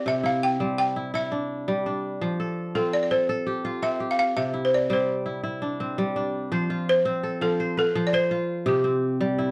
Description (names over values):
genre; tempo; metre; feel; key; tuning
west african traditional; 112 BPM (dotted quarters); 12/8; straight; F lydian; A4 = 437 Hz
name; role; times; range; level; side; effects
balafon; melody; 0.0-9.5 s; G4 to G5; -26 LUFS; equal; none
kora; arpeggios; 0.0-9.5 s; C3 to C5; -29 LUFS; equal; none
room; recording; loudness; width
moderate small room reverb, RT60 0.5 s; dark, warm production; -25 LUFS; mono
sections
0.0-6.5 A section; 6.5-9.5 B section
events
balafon solo 6.5-9.5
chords
0.1 C; 2.2 F; 4.4 C; 6.5 F; 8.7 C